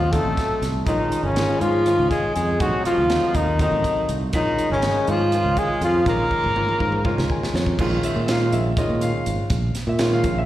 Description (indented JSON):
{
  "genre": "electric jazz fusion",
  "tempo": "243 BPM (eighths)",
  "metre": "7/8",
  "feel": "straight",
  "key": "Bb minor",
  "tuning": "A4 = 438 Hz",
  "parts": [
    { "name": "mellow trumpet", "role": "melody", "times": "0.0-7.3 s", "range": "Db4 to Bb4", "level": "-22 LUFS", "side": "left 2 dB", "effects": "slapback echo, analog delay" },
    { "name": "edgy tenor saxophone", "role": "second line", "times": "0.0-7.3 s", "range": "Db3 to Bb3", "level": "-28 LUFS", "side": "right 1 dB", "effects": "slapback echo" },
    { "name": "modern bright fingered electric bass", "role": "bass", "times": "0.0-10.4 s", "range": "Ab1 to Bb2", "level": "-23 LUFS", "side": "equal", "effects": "none" },
    { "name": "clear concert grand piano", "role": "accompaniment", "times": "0.1-10.5 s", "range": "Eb3 to Ab5", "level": "-26 LUFS", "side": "right 2 dB", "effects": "slapback echo" },
    { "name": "crisp fusion drum kit", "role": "drums", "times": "0.1-10.4 s", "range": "crash cymbal, hi-hat, kick drum, snare drum, toms", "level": "-26 LUFS", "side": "equal", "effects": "none" }
  ],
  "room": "moderate club reverb, RT60 0.8 s",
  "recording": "live gig heard through the venue's PA, recital hall reverb",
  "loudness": "-18 LUFS",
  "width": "side -13 dB against mid",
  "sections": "0.0-7.8 A section; 7.8-10.5 B section",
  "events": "drum fill 6.3-7.8; grand piano fill 7.1-7.8",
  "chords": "0.0 Adim7; 0.9 Bbm7 (rootless); 2.6 F7b9/Bb; 4.3 Bbm7"
}